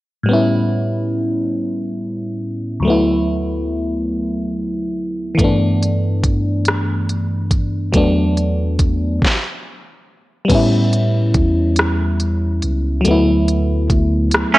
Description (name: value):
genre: slow six-eight R&B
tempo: 47 BPM (dotted quarters)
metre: 6/8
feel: straight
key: unclear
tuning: A4 = 439 Hz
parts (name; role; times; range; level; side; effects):
- FM electric piano; accompaniment; 0.2-14.6 s; D2 to E4; -17 LUFS; equal; chorus
- mellow tine electric piano; bass; 5.4-14.4 s; C#2 to A2; -18 LUFS; equal; medium stereo tremolo
- smooth R&B drum kit; drums; 5.4-14.5 s; crash cymbal, hi-hat, kick drum, rim click, snare drum; -18 LUFS; equal; none
- clean electric guitar; second line; 14.5-14.6 s; A3 to C#4; -8 LUFS; right 4 dB; spring reverb
room: light reverb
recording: worn, warbling old tape, cassette tape, warbly pitch drift, nothing above 10.6 kHz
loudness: -15 LUFS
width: side -18 dB against mid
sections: 0.3-10.5 A section; 10.5-14.6 B section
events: stop 9.2-10.5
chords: 0.3 A9; 2.8 D6; 5.4 G69; 7.9 E7sus4; 10.5 A9; 13.0 D6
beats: | 0.28 1.56 | 2.83 4.11 | 5.39 6.67 | 7.94 9.22 | 10.49 11.77 | 13.05 14.32